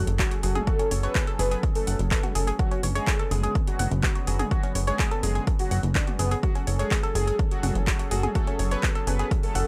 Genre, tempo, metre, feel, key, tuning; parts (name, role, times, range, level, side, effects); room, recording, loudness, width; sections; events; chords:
melodic techno; 125 BPM; 4/4; straight; F# minor; A4 = 444 Hz
fat analog lead; melody; 0.0-9.6 s; B3 to B4; -34 LUFS; equal; phaser, lush chorus, sidechain pumping, tape echo
warm analog pad; sustained chords; 0.0-9.7 s; D3 to A4; -39 LUFS; equal; chorus, tremolo, sidechain pumping
woody wave-folded pluck; arpeggios; 0.0-9.6 s; C#4 to F#6; -35 LUFS; equal; chorus, sidechain pumping, analog delay
plucky analog bass; bass; 0.0-9.6 s; F#1; -28 LUFS; equal; tube saturation, sidechain pumping
impact; sound effects; 0.0-0.7 s; barely audible
techno drum kit; drums; 0.1-9.6 s; handclaps, hi-hat, toms; -34 LUFS; equal
electronic kick drum; drums; 0.2-9.4 s; -28 LUFS; equal
digital ambience; dry, gritty hardware recording; -25 LUFS; mono
0.0-9.7 A section
impact 0.0-0.7
0.0 F#m; 2.6 Bmadd9/F#; 6.4 F#m